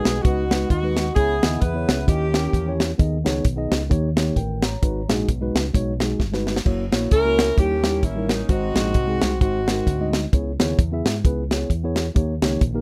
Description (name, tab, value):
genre	uptempo gospel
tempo	131 BPM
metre	4/4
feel	swing 58% on 8ths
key	G# minor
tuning	A4 = 440 Hz
part	clear saxophone section	melody	0.0-3.0, 7.1-10.3 s	A#3 to B4	-26 LUFS	equal	none
part	mellow tine electric piano	accompaniment	0.0-12.8 s	G#2 to A#5	-28 LUFS	equal	none
part	fingered electric bass	bass	0.1-12.8 s	F#1 to G#2	-28 LUFS	equal	none
part	tight funk drum kit	drums	0.1-12.7 s	crash cymbal, hi-hat, kick drum, snare drum	-23 LUFS	equal	none
room	light reverb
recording	rough home demo mix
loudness	-21 LUFS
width	mono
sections	0.0-12.8 A section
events	drum fill 6.2-6.7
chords	0.0 G#m7; 1.2 C#m7; 2.1 D#7b9; 3.0 G#m; 3.9 D#7; 4.8 G#m7; 6.7 F#7; 7.6 D#7b9; 8.5 G#7; 10.3 C#m7; 12.2 D#7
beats	0.25 0.71 | 1.16 1.62 2.08 2.54 | 2.99 3.45 3.91 4.36 | 4.82 5.28 5.74 6.20 | 6.66 7.12 7.57 8.03 | 8.49 8.95 9.41 9.87 | 10.33 10.78 11.24 11.70 | 12.16 12.61